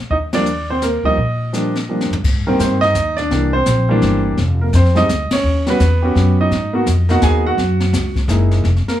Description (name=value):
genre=jazz piano trio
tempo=169 BPM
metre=3/4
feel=swing 63% on 8ths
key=unclear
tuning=A4 = 440 Hz
part: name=warm baby grand piano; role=melody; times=0.1-9.0 s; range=Eb3 to Ab5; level=-17 LUFS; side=right 1 dB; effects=none
part: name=upright bass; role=bass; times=0.1-8.9 s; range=F1 to Bb2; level=-17 LUFS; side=equal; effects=none
part: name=jazz brush drum kit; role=drums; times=0.1-9.0 s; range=brushed snare drum, crash cymbal, hi-hat, kick drum, ride cymbal, snare drum, toms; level=-23 LUFS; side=left 2 dB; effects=none
room=light reverb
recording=studio ambience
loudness=-13 LUFS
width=side -12 dB against mid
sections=0.0-2.2 A section; 2.2-9.0 B section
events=band accent 0.3, 5.3; drum fill 1.9-2.2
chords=0.1 Ebmaj7; 2.2 Abmaj9; 3.3 C7; 4.4 F7(no3); 5.4 Eb7alt; 6.5 Abm7; 7.6 Gb13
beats=| 0.11 0.46 0.82 | 1.18 1.53 1.89 | 2.24 2.60 2.96 | 3.31 3.67 4.02 | 4.38 4.73 5.09 | 5.45 5.80 6.16 | 6.51 6.87 7.22 | 7.58 7.93 8.29 | 8.65